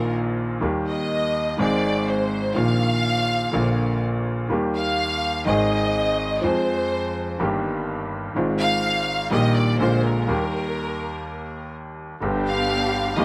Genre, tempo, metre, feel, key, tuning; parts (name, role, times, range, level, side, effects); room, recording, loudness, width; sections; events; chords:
tango; 124 BPM; 4/4; rubato; Eb major; A4 = 441 Hz
bright symphonic violin section; second line; 0.0-13.2 s; Bb4 to F5; -27 LUFS; equal
bright upright piano; accompaniment; 0.0-13.2 s; G1 to Ab4; -26 LUFS; equal; slapback echo
upright bass; bass; 0.0-13.2 s; G1 to F2; -30 LUFS; equal
dark chamber string section; stabs; 12.2-13.2 s; Bb3 to G4; -28 LUFS; equal
little or no reverb; recorded outdoors, with no room sound; -23 LUFS; mono
0.0-13.2 A section
violin section solo 0.0-13.2
0.0 Bbsus4; 0.6 Eb; 1.6 Ab; 2.6 Bbsus4; 3.5 Bb; 4.5 Eb; 5.5 Ab; 6.4 Fm; 7.4 Eb/G; 8.4 Ab6; 9.3 Eb/Bb; 9.8 Bb7; 10.3 Eb; 12.2 G